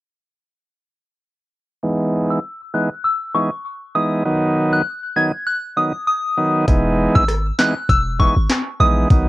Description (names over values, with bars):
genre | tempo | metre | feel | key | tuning
dancehall | 99 BPM | 4/4 | swing 56% on 16ths | unclear | A4 = 441 Hz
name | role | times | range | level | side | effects
bright tonewheel organ | accompaniment | 1.8-9.3 s | D#3 to D#4 | -18 LUFS | right 1 dB | low-pass filter, cassette tape
soft synth bell | melody | 2.3-8.9 s | C#6 to G#6 | -20 LUFS | left 1 dB | chorus, phaser, low-pass filter, cassette tape, tape echo
warm 808-style bass | bass | 6.7-9.3 s | E1 to B1 | -18 LUFS | equal | none
island pop drum kit | drums | 6.7-9.3 s | handclaps, hi-hat, kick drum, rim click, snare drum | -17 LUFS | equal | overdrive, cassette tape
room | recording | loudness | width
light reverb | home recording on cassette | -16 LUFS | side -17 dB against mid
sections
1.8-6.7 A section; 6.7-9.3 B section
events
filter sweep 1.8-6.7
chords
1.8 Emaj7; 4.3 B; 6.7 Emaj7